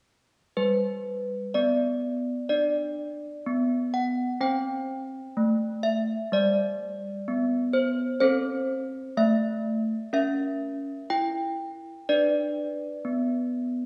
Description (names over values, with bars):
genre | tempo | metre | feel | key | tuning
classical, tune for handbells | 63 BPM | 4/4 | straight | G major | A4 = 444 Hz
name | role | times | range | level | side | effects
desk bells | solo | 0.6-13.9 s | G3 to G5 | -27 LUFS | equal | none
room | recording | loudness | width
wet recital hall reverb, RT60 1.6 s | recorded in a church or concert hall, studio ambience | -27 LUFS | mono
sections
0.6-13.9 A section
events
none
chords
0.6 G; 4.4 C5; 8.2 Am/C; 10.1 C#dim7; 12.1 Bm